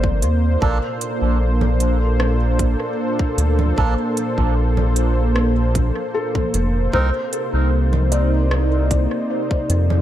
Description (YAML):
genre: ambient dub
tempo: 76 BPM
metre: 4/4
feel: straight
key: unclear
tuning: A4 = 440 Hz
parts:
  - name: warm analog pad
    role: sustained chords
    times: 0.0-10.0 s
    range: Bb2 to C5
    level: -22 LUFS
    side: right 1 dB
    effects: chorus
  - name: felt-muted upright piano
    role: arpeggios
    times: 0.0-10.0 s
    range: A4 to D5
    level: -28 LUFS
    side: left 3 dB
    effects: tape echo
  - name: round analog bass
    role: bass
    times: 0.0-10.0 s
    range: F1 to F2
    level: -17 LUFS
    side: equal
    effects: none
  - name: electronic kick drum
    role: drums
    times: 0.0-9.7 s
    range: none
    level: -21 LUFS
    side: equal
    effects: overdrive
  - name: organic electronic drum kit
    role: drums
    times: 0.0-10.0 s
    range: congas, hi-hat, rim click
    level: -28 LUFS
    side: right 2 dB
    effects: overdrive, dub echo
  - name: melodica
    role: stabs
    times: 0.6-7.1 s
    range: Bb3 to Bb4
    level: -29 LUFS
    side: right 5 dB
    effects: dub echo
room: light reverb, digital ambience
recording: none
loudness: -16 LUFS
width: side -12 dB against mid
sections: 0.0-10.0 A section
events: none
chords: 0.0 Cm7; 0.6 Bbmaj7; 6.9 Cm7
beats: | 0.62 1.41 2.20 2.99 | 3.77 4.57 5.35 6.14 | 6.93 7.72 8.51 9.30